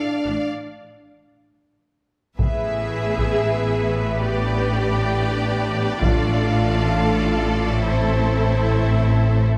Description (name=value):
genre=cinematic, epic orchestral film score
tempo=free time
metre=none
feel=none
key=unclear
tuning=A4 = 440 Hz
part: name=clear symphonic violin section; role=melody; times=0.0-9.5 s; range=C5 to F5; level=-32 LUFS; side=equal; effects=none
part: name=clear symphonic violin section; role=second line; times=0.0-9.5 s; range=A4 to D5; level=-33 LUFS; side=equal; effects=none
part: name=warm French horn section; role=sustained chords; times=0.0-9.4 s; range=B3 to G#4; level=-32 LUFS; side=equal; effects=none
part: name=bright symphonic viola section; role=accompaniment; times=0.3-9.5 s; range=D4 to G#4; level=-30 LUFS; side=equal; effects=none
part: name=rich symphonic cello section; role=bass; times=0.3-9.5 s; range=A2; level=-25 LUFS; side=equal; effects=none
part: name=rich symphonic double bass section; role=bass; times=0.3-9.5 s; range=A1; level=-27 LUFS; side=equal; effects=none
part: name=rich symphonic string section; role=sustained chords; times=2.4-9.6 s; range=A3 to G5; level=-29 LUFS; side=equal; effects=none
part: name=taiko ensemble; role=drums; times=2.4-7.0 s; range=none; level=-26 LUFS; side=equal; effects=none
room=moderate scoring stage reverb, RT60 1.6 s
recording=none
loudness=-20 LUFS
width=mono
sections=0.0-2.4 A section; 2.4-9.6 B section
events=break 0.5-2.4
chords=0.0 Dm; 0.5 N.C.; 2.4 E/A; 4.2 G/A; 6.0 Dm/A; 7.8 Am